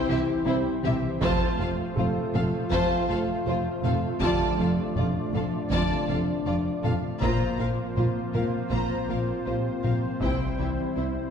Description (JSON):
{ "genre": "cinematic, hybrid orchestral and electronic film score", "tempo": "80 BPM", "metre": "4/4", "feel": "straight", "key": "D minor", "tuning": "A4 = 440 Hz", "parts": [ { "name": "warm symphonic violin section", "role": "melody", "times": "0.0-11.1 s", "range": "C5 to Bb5", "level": "-35 LUFS", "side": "left 1 dB", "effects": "none" }, { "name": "warm symphonic violin section", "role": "second line", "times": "0.0-11.1 s", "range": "E4 to D5", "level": "-34 LUFS", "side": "left 4 dB", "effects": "none" }, { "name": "warm symphonic viola section", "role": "accompaniment", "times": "0.0-11.0 s", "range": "E4 to F4", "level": "-35 LUFS", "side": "right 2 dB", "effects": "none" }, { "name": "lush unison pad", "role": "sustained chords", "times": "0.0-11.3 s", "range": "E3 to D5", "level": "-34 LUFS", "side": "equal", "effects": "chorus" }, { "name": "mellow French horn section", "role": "sustained chords", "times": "0.0-11.3 s", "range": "A3 to F4", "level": "-32 LUFS", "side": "left 3 dB", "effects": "none" }, { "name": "warm grand piano", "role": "texture", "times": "0.0-11.3 s", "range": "G3 to C5", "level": "-40 LUFS", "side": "right 1 dB", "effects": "none" }, { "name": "soft round pluck", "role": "arpeggios", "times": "0.1-11.2 s", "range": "C3 to C5", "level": "-35 LUFS", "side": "right 5 dB", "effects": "chorus, ping-pong delay" }, { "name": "smooth synth bass", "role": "riff", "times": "0.1-11.2 s", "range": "C2 to Bb3", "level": "-33 LUFS", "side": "left 2 dB", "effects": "none" }, { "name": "rich chamber cello section", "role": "bass", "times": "0.1-11.1 s", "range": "F2 to C3", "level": "-33 LUFS", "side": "right 3 dB", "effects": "none" }, { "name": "rich studio double bass section", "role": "bass", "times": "0.1-11.0 s", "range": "F1 to C2", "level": "-34 LUFS", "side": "right 2 dB", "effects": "none" }, { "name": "taiko ensemble", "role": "drums", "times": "0.8-10.9 s", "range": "none", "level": "-32 LUFS", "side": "equal", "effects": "none" } ], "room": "wet scoring stage reverb, RT60 1.6 s", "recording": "heard from further back in the room", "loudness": "-24 LUFS", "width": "side -7 dB against mid", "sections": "0.0-11.3 A section", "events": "none", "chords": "0.0 C; 1.2 F; 4.2 Dm/F; 7.2 Bbsus2; 10.2 C" }